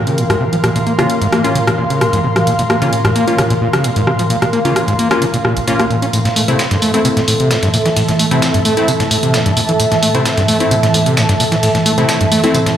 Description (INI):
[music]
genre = driving peak-time techno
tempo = 131 BPM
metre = 4/4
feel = straight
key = A phrygian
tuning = A4 = 437 Hz
[part]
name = swarming drone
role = drone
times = 0.0-12.8 s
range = A2 to E3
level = -20 LUFS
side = right 1 dB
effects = built-in reverb
[part]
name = ethereal airy pad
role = texture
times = 0.0-12.8 s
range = A4 to C6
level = -18 LUFS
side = right 1 dB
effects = ensemble chorus, built-in reverb
[part]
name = overdriven acid bass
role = riff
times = 0.1-12.7 s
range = Bb1 to Db4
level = -16 LUFS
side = equal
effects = distortion, tape echo
[part]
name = techno drum kit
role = drums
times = 0.1-12.8 s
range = hi-hat, rim click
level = -19 LUFS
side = equal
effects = none
[part]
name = supersaw stab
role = stabs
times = 1.0-12.6 s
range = A3 to F4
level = -19 LUFS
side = left 2 dB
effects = tape echo
[part]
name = dusty soul sampler-style drum kit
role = drums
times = 6.1-12.8 s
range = hi-hat, snare drum, tambourine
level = -21 LUFS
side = equal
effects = high-pass filter on perc, high-pass filter on snare, high-pass filter on hats
[sound]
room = moderate stone room reverb, RT60 1.4 s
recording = played on a big sound system in a bare room, large studio reverb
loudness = -11 LUFS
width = side -10 dB against mid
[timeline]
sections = 0.0-6.1 A section; 6.1-12.8 B section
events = build-up 6.1-12.8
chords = 0.0 Bbm; 6.1 Am